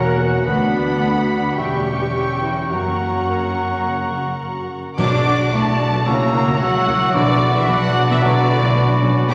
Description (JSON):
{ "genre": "classical, dramatic, fast romantic movement for symphony orchestra", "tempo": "109 BPM", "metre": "4/4", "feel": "uneven beats", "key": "B minor", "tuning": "A4 = 439 Hz", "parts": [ { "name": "clear symphonic violin section", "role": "melody", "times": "0.0-9.3 s", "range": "D5 to D6", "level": "-28 LUFS", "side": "equal", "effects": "none" }, { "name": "clear clarinet", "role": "second line", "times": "0.0-9.3 s", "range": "F#4 to F#5", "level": "-29 LUFS", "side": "equal", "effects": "none" }, { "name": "concert flute", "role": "second line", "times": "0.0-9.3 s", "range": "A#5 to E6", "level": "-28 LUFS", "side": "equal", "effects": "none" }, { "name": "mellow cor anglais", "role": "second line", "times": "0.0-9.3 s", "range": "A#4 to G5", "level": "-32 LUFS", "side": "equal", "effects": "none" }, { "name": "rich symphonic violin section", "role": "second line", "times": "0.0-9.3 s", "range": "F#4 to B5", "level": "-29 LUFS", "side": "equal", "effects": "none" }, { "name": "mellow bassoon", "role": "accompaniment", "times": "0.0-9.3 s", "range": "F#3 to F#4", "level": "-30 LUFS", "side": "equal", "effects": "none" }, { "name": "warm symphonic viola section", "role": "accompaniment", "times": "0.0-9.3 s", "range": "F#3 to A#4", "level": "-31 LUFS", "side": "equal", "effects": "none" }, { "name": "mellow French horn section", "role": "sustained chords", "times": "0.0-9.3 s", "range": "A#3 to G4", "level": "-29 LUFS", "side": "equal", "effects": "none" }, { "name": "concert harp", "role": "arpeggios", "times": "0.0-9.3 s", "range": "F#2 to D5", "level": "-26 LUFS", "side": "equal", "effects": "none" }, { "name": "rich studio double bass section", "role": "bass", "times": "0.0-9.3 s", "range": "E1 to D2", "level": "-27 LUFS", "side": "equal", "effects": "none" }, { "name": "rich symphonic cello section", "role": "bass", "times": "0.0-9.3 s", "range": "D2 to D4", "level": "-26 LUFS", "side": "equal", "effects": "none" }, { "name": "bright trombone section", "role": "sustained chords", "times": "5.0-9.3 s", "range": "B2 to G3", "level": "-33 LUFS", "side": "equal", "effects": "none" }, { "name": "clash cymbals and concert bass drum", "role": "percussion", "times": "5.0-6.0 s", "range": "none", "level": "-36 LUFS", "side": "equal", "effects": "none" }, { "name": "timpani", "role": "percussion", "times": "5.0-7.9 s", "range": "B2", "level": "-29 LUFS", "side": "equal", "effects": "none" } ], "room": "wet scoring stage reverb, RT60 1.8 s", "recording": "vinyl crackle", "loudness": "-18 LUFS", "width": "mono", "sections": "0.0-5.0 A section; 5.0-9.3 B section", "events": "band accent 5.0-5.5", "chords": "0.5 Bm/D; 1.6 C#dim/E; 2.7 F#; 5.0 Bm; 6.1 F#7/C#; 7.1 Bm", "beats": "| 0.46 1.01 1.58 2.14 | 2.71 3.28 3.85 4.42 | 4.98 5.53 6.07 6.61 | 7.15 7.69 8.23 8.76 | 9.30" }